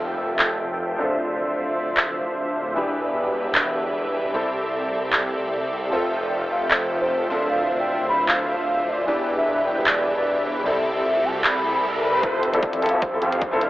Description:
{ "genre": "future bass", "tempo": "152 BPM", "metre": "4/4", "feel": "swing 53% on 16ths, half-time", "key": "F lydian", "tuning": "A4 = 440 Hz", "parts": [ { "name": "felt-muted upright piano", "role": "accompaniment", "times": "0.0-13.6 s", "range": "E3 to E5", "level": "-28 LUFS", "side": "left 1 dB", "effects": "sidechain pumping" }, { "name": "airy breathy pad", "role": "sustained chords", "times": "0.0-13.7 s", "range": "C3 to E5", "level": "-38 LUFS", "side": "equal", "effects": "none" }, { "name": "supersaw chords", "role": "riff", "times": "0.0-13.7 s", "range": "D3 to G5", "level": "-25 LUFS", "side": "equal", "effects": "sidechain pumping, low-pass filter" }, { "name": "wide detuned saw bass", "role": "bass", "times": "0.0-13.7 s", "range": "D1 to F2", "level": "-30 LUFS", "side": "equal", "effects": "chorus, sidechain pumping, high-pass filter" }, { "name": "impact and riser", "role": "sound effects", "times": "0.0-1.2, 10.7-13.7 s", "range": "none", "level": "-30 LUFS", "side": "equal", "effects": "none" }, { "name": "trap drum kit", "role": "drums", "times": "0.4-13.7 s", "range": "handclaps, hi-hat", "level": "-20 LUFS", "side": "equal", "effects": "none" }, { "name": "warm velvety synth lead", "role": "melody", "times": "5.9-13.7 s", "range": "A4 to B5", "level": "-24 LUFS", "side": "equal", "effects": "chorus, sidechain pumping, digital delay" }, { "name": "electronic kick drum", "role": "drums", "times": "12.2-13.5 s", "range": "none", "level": "-31 LUFS", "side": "equal", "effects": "overdrive" } ], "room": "moderate digital room reverb, RT60 1.0 s, digital ambience", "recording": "telephone sound", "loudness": "-20 LUFS", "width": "side -16 dB against mid", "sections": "0.0-12.2 A section; 12.2-13.7 B section", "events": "impact 0.0-1.2; filter sweep on supersaw synth 0.0-12.2, 12.2-13.7; riser 10.7-12.2; build-up 12.2-13.7", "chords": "0.0 Fmaj7; 1.0 Dm7; 2.8 Em7; 4.3 C6; 5.9 Fmaj7; 7.3 Dm7; 9.1 Em7; 10.7 C6; 12.2 Fmaj7", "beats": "0.00 0.39 0.79 | 1.18 1.58 1.97 2.37 | 2.76 3.15 3.55 3.94 | 4.34 4.73 5.13 5.52 | 5.92 6.31 6.71 7.10 | 7.50 7.89 8.29 8.68 | 9.08 9.47 9.87 10.26 | 10.65 11.05 11.44 11.84 | 12.23 12.63 13.02 13.42" }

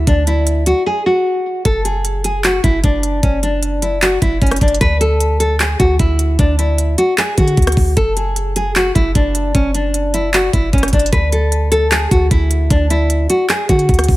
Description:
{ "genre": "hip hop, trap", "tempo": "152 BPM", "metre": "4/4", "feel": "half-time", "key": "unclear", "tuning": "A4 = 439 Hz", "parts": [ { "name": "nylon-string guitar", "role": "melody", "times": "0.0-14.2 s", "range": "C#4 to B4", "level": "-16 LUFS", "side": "equal", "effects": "low-pass filter" }, { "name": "clean 808-style bass", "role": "bass", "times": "0.0-14.2 s", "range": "F#1 to D3", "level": "-17 LUFS", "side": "equal", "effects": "none" }, { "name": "trap drum kit", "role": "drums", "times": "0.1-14.2 s", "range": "handclaps, hi-hat, kick drum, rim click", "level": "-15 LUFS", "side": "equal", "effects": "none" } ], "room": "digital ambience", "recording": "none", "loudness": "-12 LUFS", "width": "side -17 dB against mid", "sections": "0.0-8.0 A section; 8.0-14.2 A section", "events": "break 0.9-1.7", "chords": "0.0 Dadd9; 1.7 N.C.; 4.8 Dadd9; 8.0 N.C.; 11.1 Dadd9", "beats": "| 0.07 0.47 0.86 1.26 | 1.65 2.05 2.44 2.84 | 3.23 3.63 4.02 4.42 | 4.81 5.21 5.60 5.99 | 6.39 6.78 7.18 7.57 | 7.97 8.36 8.76 9.15 | 9.55 9.94 10.34 10.73 | 11.13 11.52 11.91 12.31 | 12.71 13.10 13.49 13.89" }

